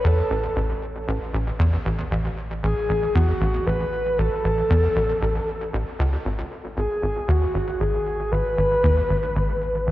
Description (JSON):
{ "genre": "ambient, sequencer-driven space music", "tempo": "116 BPM", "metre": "4/4", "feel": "straight", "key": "G# phrygian", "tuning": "A4 = 441 Hz", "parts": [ { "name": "breathy flute-like synth lead", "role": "melody", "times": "0.0-9.9 s", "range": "F#4 to B4", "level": "-24 LUFS", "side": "equal", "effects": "wide subtle chorus, tape echo" }, { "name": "tight sequencer bass", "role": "riff", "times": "0.0-9.9 s", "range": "G#1 to E2", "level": "-22 LUFS", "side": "equal", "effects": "lush chorus, tape echo" }, { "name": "warm sub bass", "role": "bass", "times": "0.0-9.9 s", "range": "G#1 to A1", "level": "-34 LUFS", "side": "equal", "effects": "none" } ], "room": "moderate lush hall reverb, RT60 2.7 s", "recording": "worn, warbling old tape, cassette tape, warbly pitch drift", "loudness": "-20 LUFS", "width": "side -15 dB against mid", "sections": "0.0-9.9 A section", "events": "none", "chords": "0.0 N.C.; 6.3 G#m" }